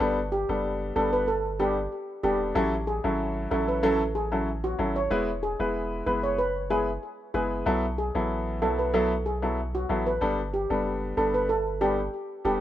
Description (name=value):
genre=dancehall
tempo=94 BPM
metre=4/4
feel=straight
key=unclear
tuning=A4 = 443 Hz
part: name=clear grand piano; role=accompaniment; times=0.0-12.6 s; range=F#3 to B4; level=-27 LUFS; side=left 2 dB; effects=none
part: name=punchy sub bass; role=bass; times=0.0-12.6 s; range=E1 to B1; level=-33 LUFS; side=equal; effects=none
part: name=steel pan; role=melody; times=0.3-12.6 s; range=F#4 to C#5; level=-28 LUFS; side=right 1 dB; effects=ping-pong delay
room=light reverb, small room ambience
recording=rough home demo mix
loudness=-24 LUFS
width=side -12 dB against mid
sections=0.0-12.6 A section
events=none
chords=0.0 Gadd9; 2.6 A6; 5.1 E; 7.7 B7sus4; 10.2 Gadd9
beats=| 0.00 0.64 1.28 1.92 | 2.56 3.19 3.83 4.47 | 5.11 5.75 6.38 7.02 | 7.66 8.30 8.94 9.58 | 10.21 10.85 11.49 12.13